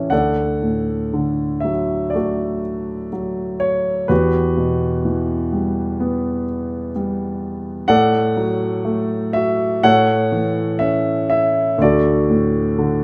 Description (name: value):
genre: classical, lyrical solo piano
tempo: 62 BPM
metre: 4/4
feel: rubato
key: D major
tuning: A4 = 441 Hz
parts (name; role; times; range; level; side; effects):
- warm concert grand piano; solo; 0.0-13.0 s; D2 to A5; -19 LUFS; equal; none
room: moderate recital hall reverb, RT60 1.5 s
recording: dark, warm production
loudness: -19 LUFS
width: mono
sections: 0.1-13.0 A section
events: none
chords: 0.1 D; 4.1 Emadd9; 7.9 D/A; 9.8 A; 11.8 D